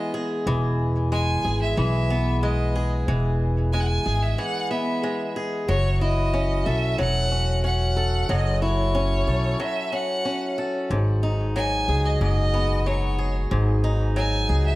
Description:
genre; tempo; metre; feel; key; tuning
folktronica; 92 BPM; 4/4; straight; E major; A4 = 439 Hz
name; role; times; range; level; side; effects
bright violin; melody; 0.0-14.8 s; C#5 to G#5; -28 LUFS; right 1 dB; tape echo
picked swing-style acoustic guitar; arpeggios; 0.0-14.8 s; G#2 to A4; -26 LUFS; left 1 dB; tape echo
upright bass; bass; 0.5-14.8 s; E1 to C#2; -22 LUFS; equal; none
room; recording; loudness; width
light reverb; vinyl crackle; -21 LUFS; side -18 dB against mid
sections
0.0-14.8 A section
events
none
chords
0.0 E; 5.7 F#m7; 10.9 G#m7

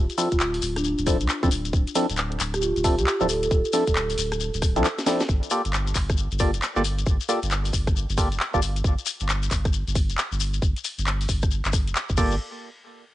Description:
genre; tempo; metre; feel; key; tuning
UK garage, two-step garage; 135 BPM; 4/4; swing 64% on 16ths; G minor; A4 = 440 Hz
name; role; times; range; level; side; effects
saturated sub bass; bass; 0.0-12.4 s; D1 to C2; -27 LUFS; equal; none
garage drum kit; drums; 0.1-12.3 s; crash cymbal, handclaps, hi-hat, rim click, snare drum; -29 LUFS; equal; cassette tape
shekere; percussion; 0.1-12.4 s; none; -32 LUFS; left 10 dB; none
marimba with soft mallets; melody; 0.2-4.2 s; D4 to A4; -27 LUFS; right 1 dB; cassette tape, analog delay
percussive organ stab; stabs; 0.2-8.6, 12.2-12.4 s; F3 to D5; -26 LUFS; equal; chorus, phaser, analog delay
electronic kick drum; drums; 0.3-12.3 s; none; -23 LUFS; equal; cassette tape
room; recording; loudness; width
digital ambience; home recording on cassette, nothing above 10.3 kHz; -21 LUFS; side -15 dB against mid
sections
0.0-5.3 A section; 5.3-12.4 B section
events
drop 0.0-5.3; drum fill 5.0-5.3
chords
0.0 Dm9; 5.3 Gm9; 12.4 N.C.

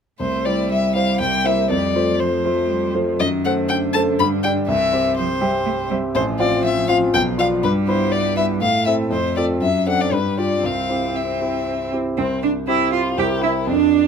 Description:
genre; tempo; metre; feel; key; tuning
quick classical-period movement for piano trio; 120 BPM; 3/4; straight; C major; A4 = 442 Hz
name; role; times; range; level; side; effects
rich violin; melody; 0.2-14.1 s; C4 to B5; -22 LUFS; left 4 dB; none
clear cello; second line; 0.2-14.1 s; D3 to G4; -24 LUFS; right 9 dB; none
clear grand piano; accompaniment; 0.2-14.1 s; A1 to F5; -20 LUFS; left 1 dB; none
room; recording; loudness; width
light reverb; minimal, uncompressed stereo recording; -17 LUFS; side -7 dB against mid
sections
0.2-12.2 A section; 12.2-14.1 A section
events
none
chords
0.2 C; 1.2 C7; 1.7 F; 3.2 F#dim7; 4.2 G5; 4.7 C; 6.2 F/A; 7.1 Bdim; 7.6 Em/G; 8.6 Am; 9.1 F; 9.6 D7/F#; 10.1 G7; 10.6 C; 13.2 C7

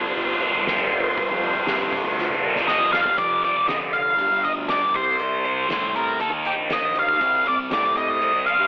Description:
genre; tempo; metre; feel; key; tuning
psychedelic rock; 119 BPM; 4/4; straight; unclear; A4 = 438 Hz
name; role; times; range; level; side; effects
warm symphonic string section; sustained chords; 0.0-3.2 s; F4 to C6; -26 LUFS; right 1 dB; none
thick fuzz guitar; riff; 0.0-8.7 s; F2 to Bb4; -25 LUFS; equal; distortion, phaser
fuzz fingered electric bass; bass; 0.0-8.7 s; G1 to D3; -30 LUFS; equal; overdrive
tanpura; drone; 0.0-8.7 s; G2 to G3; -32 LUFS; equal; none
soft-mallet drum kit; drums; 0.2-8.6 s; hi-hat, kick drum, ride cymbal, snare drum, toms; -30 LUFS; equal; none
octave-fuzz lead guitar; melody; 2.7-8.7 s; G4 to F5; -20 LUFS; equal; distortion, analog delay
room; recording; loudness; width
wet spring reverb, RT60 1.4 s, studio reverb; telephone sound; -19 LUFS; side -26 dB against mid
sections
0.0-3.2 A section; 3.2-8.7 B section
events
drum fill 2.2-3.2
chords
0.0 Bbsus2/G; 3.2 F5; 4.2 G5; 4.9 C5; 6.2 Eb5; 7.2 Cm

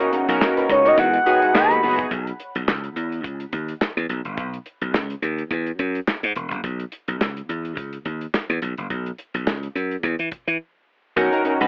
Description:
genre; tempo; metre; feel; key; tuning
early-eighties boogie funk; 106 BPM; 4/4; swing 56% on 16ths; B major; A4 = 440 Hz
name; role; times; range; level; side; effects
chorused polysynth; accompaniment; 0.0-2.1, 11.2-11.7 s; B3 to B4; -24 LUFS; equal; none
brassy analog pad; sustained chords; 0.0-2.1, 11.2-11.7 s; B2 to F#4; -31 LUFS; equal; chorus
semi-hollow electric guitar; riff; 0.0-2.0, 11.2-11.6 s; G#3 to B4; -28 LUFS; equal; ensemble chorus
damped 70s drum kit; drums; 0.0-11.7 s; handclaps, hi-hat, kick drum, snare drum; -27 LUFS; equal; none
slap bass; bass; 0.3-11.7 s; E1 to E3; -27 LUFS; equal; none
expressive synth lead; melody; 0.7-2.0 s; C#5 to B5; -22 LUFS; equal; chorus, cassette tape, analog delay
warm horn section; second line; 0.9-1.7 s; D#3 to G#4; -26 LUFS; equal; none
room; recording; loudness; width
light reverb; home recording on cassette, telephone sound; -23 LUFS; mono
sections
0.0-2.1 A section; 2.1-11.2 B section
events
break 10.6-11.2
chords
0.0 Bmaj9; 1.0 Emaj9; 2.1 Bsus2; 3.0 C#madd9; 4.1 Badd9; 5.5 Esus2; 6.6 Bsus2; 7.5 C#madd9; 8.6 Bsus2; 10.0 N.C.; 11.2 Bmaj9

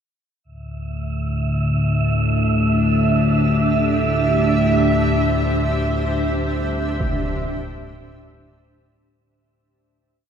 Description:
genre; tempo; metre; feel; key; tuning
dark ambient drone; free time; none; none; unclear; A4 = 437 Hz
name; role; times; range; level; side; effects
analog drone; drone; 0.6-9.3 s; D2 to A2; -19 LUFS; left 1 dB; chorus
wind-like tuned noise texture; texture; 1.0-9.2 s; E5; -24 LUFS; right 4 dB; built-in reverb
granular cloud pad; sustained chords; 2.4-9.2 s; D4 to E5; -25 LUFS; right 1 dB; built-in reverb
impact; percussion; 7.0-7.2 s; none; -27 LUFS; equal; low-pass filter on sfx
room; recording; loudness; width
wet cathedral reverb, RT60 5.2 s; none; -17 LUFS; side -8 dB against mid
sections
0.4-9.2 A section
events
fade-in on ambient pad 0.4-9.2; fade-out 4.8-9.2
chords
0.4 Dsus2

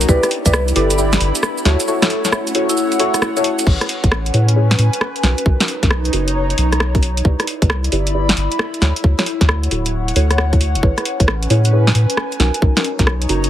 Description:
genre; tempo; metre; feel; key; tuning
UK garage, two-step garage; 134 BPM; 4/4; swing 65% on 16ths; A major; A4 = 440 Hz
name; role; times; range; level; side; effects
vibraphone with medium mallets; melody; 0.0-3.6 s; E4 to B4; -22 LUFS; left 2 dB; tape echo
soft string machine; sustained chords; 0.0-3.6 s; A3 to G4; -27 LUFS; equal; ensemble chorus, sidechain pumping
soft dub sub bass; bass; 0.0-13.5 s; D1 to A2; -16 LUFS; equal; none
garage drum kit; drums; 0.0-13.5 s; crash cymbal, hi-hat, rim click, shaker, snare drum; -19 LUFS; equal; none
airy breathy pad; texture; 0.0-13.5 s; C#4 to B5; -24 LUFS; equal; chorus, sidechain pumping
deep mellow chord stab; stabs; 0.1-13.5 s; C#4 to D5; -22 LUFS; left 1 dB; chorus
electronic kick drum; drums; 0.1-0.5, 3.7-13.1 s; none; -15 LUFS; equal; none
room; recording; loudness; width
light reverb, digital ambience; heavily compressed radio sound, multiband compression; -14 LUFS; side -12 dB against mid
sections
0.0-3.7 A section; 3.7-13.5 B section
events
drop 0.0-3.7; filter sweep on synth stab 3.7-13.5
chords
0.1 Cmaj9; 1.7 Dmaj9 (rootless); 3.7 Amaj9; 5.2 Bmaj9; 7.2 Cmaj9; 8.8 Dmaj9; 10.8 Amaj9; 12.4 Bmaj9

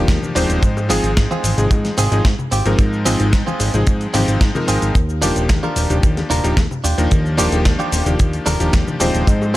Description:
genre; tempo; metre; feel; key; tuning
nu-disco, nu disco; 111 BPM; 4/4; straight; Eb major; A4 = 440 Hz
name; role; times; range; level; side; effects
bright electric grand piano; accompaniment; 0.0-9.6 s; Eb3 to C5; -21 LUFS; left 2 dB; ping-pong delay
direct-recorded clean electric guitar; riff; 0.0-9.6 s; C4 to Bb4; -23 LUFS; right 3 dB; wide subtle chorus, ping-pong delay
fat analog bass; bass; 0.0-9.6 s; Eb1 to Ab2; -19 LUFS; equal; none
dusty soul sampler-style drum kit; drums; 0.1-9.5 s; hi-hat, shaker, snare drum; -24 LUFS; equal; none
kick drum; drums; 0.1-9.4 s; none; -15 LUFS; equal; none
congas and bongos; percussion; 0.2-9.5 s; none; -28 LUFS; left 3 dB; none
room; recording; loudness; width
small room ambience; none; -14 LUFS; side -16 dB against mid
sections
0.0-9.6 A section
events
none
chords
0.0 Ebmaj9; 0.6 Ab6; 5.0 Ebmaj9

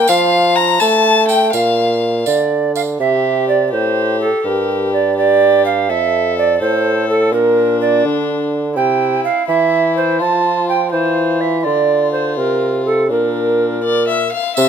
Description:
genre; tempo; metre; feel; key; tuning
classical, renaissance-style consort dance; 83 BPM (dotted quarters); 6/8; straight; C mixolydian; A4 = 440 Hz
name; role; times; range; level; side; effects
warm violin; melody; 0.0-14.7 s; D4 to Bb5; -20 LUFS; left 8 dB; none
mellow tenor recorder; second line; 0.0-14.7 s; C4 to Bb5; -16 LUFS; right 4 dB; none
mellow bassoon; bass; 0.0-14.7 s; F2 to A3; -17 LUFS; right 1 dB; none
tambourine; percussion; 0.1-3.0, 14.6-14.7 s; none; -24 LUFS; right 7 dB; none
room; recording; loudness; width
moderate stone room reverb, RT60 1.2 s; none; -13 LUFS; side -7 dB against mid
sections
0.0-3.0 A section; 3.0-14.6 B section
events
none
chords
0.1 F; 1.5 Bb; 3.0 C; 4.4 Gm; 5.9 F; 7.3 Bb; 8.8 C; 10.2 F; 11.6 Dm; 13.1 Bb

